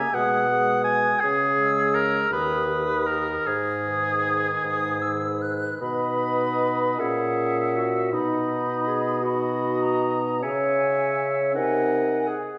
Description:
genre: classical, slow romantic movement for wind quintet.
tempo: 52 BPM (dotted quarters).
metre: 6/8.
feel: uneven beats, rubato.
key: G# minor, B major from 5.8 s.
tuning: A4 = 440 Hz.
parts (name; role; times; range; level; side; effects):
silver concert flute; melody; 0.0-12.4 s; F#5 to F#6; -32 LUFS; equal; none.
warm oboe; second line; 0.0-12.4 s; G#4 to G#5; -28 LUFS; equal; none.
warm French horn; accompaniment; 0.0-12.3 s; D#3 to D#4; -36 LUFS; equal; none.
warm clarinet; accompaniment; 0.0-12.6 s; D#4 to C#5; -31 LUFS; equal; none.
dark bassoon; bass; 0.1-12.4 s; D#2 to C#3; -29 LUFS; equal; none.
room: wet scoring stage reverb, RT60 1.8 s.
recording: none.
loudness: -24 LUFS.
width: mono.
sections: 0.0-5.8 A section; 5.8-12.6 B section.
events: none.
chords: 0.1 G#m/B; 1.2 C#m; 2.3 D#; 3.5 G#m; 5.8 B; 7.0 F#7/A#; 8.1 B; 10.4 C#m; 11.6 G#7/B#.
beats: 0.12 | 1.22 2.31 | 3.46 4.64 | 5.82 6.99 | 8.13 9.24 | 10.43 11.56.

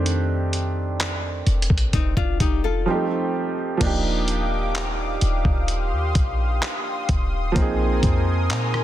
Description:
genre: contemporary R&B.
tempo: 64 BPM.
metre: 4/4.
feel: straight.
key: unclear.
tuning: A4 = 440 Hz.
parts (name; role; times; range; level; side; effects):
clear concert grand piano; accompaniment; 0.0-8.8 s; Eb3 to Ab4; -26 LUFS; right 3 dB; none.
clean 808-style bass; bass; 0.0-8.8 s; Eb1 to Bb2; -23 LUFS; equal; none.
dusty soul sampler-style drum kit; drums; 0.1-8.8 s; crash cymbal, handclaps, hi-hat, kick drum, rim click; -24 LUFS; equal; none.
nylon-string guitar; arpeggios; 1.9-3.1 s; C4 to A4; -28 LUFS; left 9 dB; digital delay.
lush unison pad; sustained chords; 3.8-8.8 s; G4 to Eb6; -28 LUFS; left 2 dB; chorus, sidechain pumping.
room: digital ambience.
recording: dense, heavily limited modern master.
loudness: -20 LUFS.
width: side -13 dB against mid.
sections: 0.0-3.8 A section; 3.8-8.8 B section.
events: silent gap 2.9-3.8; grand piano fill 8.5-8.8.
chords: 0.0 F13; 2.9 F9; 3.8 Ebmaj9; 7.6 Bb9sus4.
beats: | 0.06 1.00 1.94 2.87 | 3.81 4.75 5.68 6.62 | 7.56 8.50.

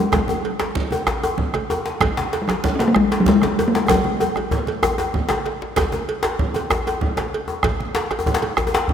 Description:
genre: west african traditional, West African drum ensemble.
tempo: 128 BPM (dotted quarters).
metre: 12/8.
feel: straight.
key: F# major pentatonic.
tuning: A4 = 436 Hz.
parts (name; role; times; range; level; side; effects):
talking drum; melody; 0.0-5.5 s; D#3 to C#4; -20 LUFS; left 1 dB; diffuse ambient delay.
bombo; percussion; 0.1-8.9 s; none; -25 LUFS; right 2 dB; none.
congas; percussion; 0.1-8.9 s; none; -28 LUFS; right 4 dB; none.
cowbell; percussion; 0.1-8.9 s; none; -28 LUFS; right 5 dB; none.
djembe; percussion; 0.1-8.9 s; none; -31 LUFS; left 1 dB; none.
djembe; percussion; 0.1-8.9 s; none; -23 LUFS; left 4 dB; none.
room: wet lush hall reverb, RT60 2.9 s.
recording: dreamy mix soaked in reverb.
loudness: -18 LUFS.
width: side -8 dB against mid.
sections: 0.0-5.8 A section; 5.8-8.9 B section.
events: drum fill 3.9-5.8.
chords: none.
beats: | 0.13 0.60 1.07 1.54 | 2.02 2.49 2.96 3.43 | 3.90 4.37 4.83 5.30 | 5.77 6.24 6.71 7.18 | 7.64 8.11 8.58.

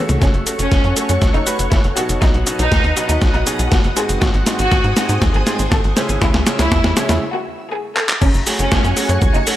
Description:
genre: italo disco.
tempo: 120 BPM.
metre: 4/4.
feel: straight.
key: unclear.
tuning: A4 = 439 Hz.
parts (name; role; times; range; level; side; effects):
rich symphonic violin section; melody; 0.0-9.6 s; B3 to B#4; -22 LUFS; equal; tape echo.
string machine, full ensemble; sustained chords; 0.0-9.6 s; F#4 to E6; -26 LUFS; equal; ensemble chorus.
bright concert grand piano; stabs; 0.0-9.6 s; G#2 to B4; -24 LUFS; equal; none.
tight sequencer bass; bass; 0.1-9.4 s; F#1 to G#2; -19 LUFS; equal; none.
dusty soul sampler-style drum kit; drums; 0.1-9.6 s; cabasa, crash cymbal, handclaps, hi-hat, snare drum, toms; -20 LUFS; equal; overdrive, small room ambience, gated reverb.
electronic kick drum; drums; 0.2-9.3 s; none; -17 LUFS; equal; overdrive, small room ambience.
room: light reverb, digital ambience.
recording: none.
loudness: -14 LUFS.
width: side -13 dB against mid.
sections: 0.2-8.2 A section; 8.2-9.6 B section.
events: drum fill 0.0, 0.2-7.2, 8.0; break 7.2-8.2.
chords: 0.2 F#m; 2.2 B; 4.2 G#7; 6.2 C#m; 8.2 F#madd9.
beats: | 0.22 0.72 1.22 1.72 | 2.22 2.72 3.22 3.72 | 4.22 4.72 5.22 5.72 | 6.22 6.72 7.22 7.72 | 8.22 8.72 9.22.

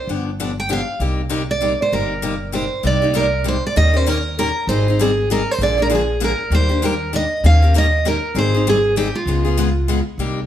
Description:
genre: acoustic string swing (jazz manouche).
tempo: 196 BPM.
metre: 3/4.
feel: swing 60% on 8ths.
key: C minor.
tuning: A4 = 438 Hz.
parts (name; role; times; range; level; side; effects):
picked steel-string acoustic guitar; melody; 0.0-10.0 s; F4 to G5; -19 LUFS; right 2 dB; none.
picked steel-string acoustic guitar; accompaniment; 0.1-10.4 s; C3 to Bb4; -22 LUFS; left 4 dB; none.
upright bass; bass; 0.1-10.5 s; G1 to Eb2; -19 LUFS; equal; none.
room: moderate large studio reverb, RT60 0.9 s.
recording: band playing live in one room.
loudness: -15 LUFS.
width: side -11 dB against mid.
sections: 0.0-2.8 A section; 2.8-10.2 B section.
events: none.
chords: 0.1 G7; 1.0 Cm7; 2.8 Cm9; 3.8 Eb7; 4.7 Abmaj7; 5.6 Bb7; 6.5 Ebmaj7; 7.4 Eb7; 8.3 Abmaj7; 9.3 Db7.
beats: | 0.08 0.39 0.69 | 1.00 1.31 1.61 | 1.92 2.23 2.53 | 2.84 3.15 3.45 | 3.76 4.07 4.37 | 4.68 4.98 5.29 | 5.59 5.90 6.21 | 6.51 6.82 7.12 | 7.43 7.74 8.04 | 8.35 8.65 8.96 | 9.27 9.57 9.88 | 10.18.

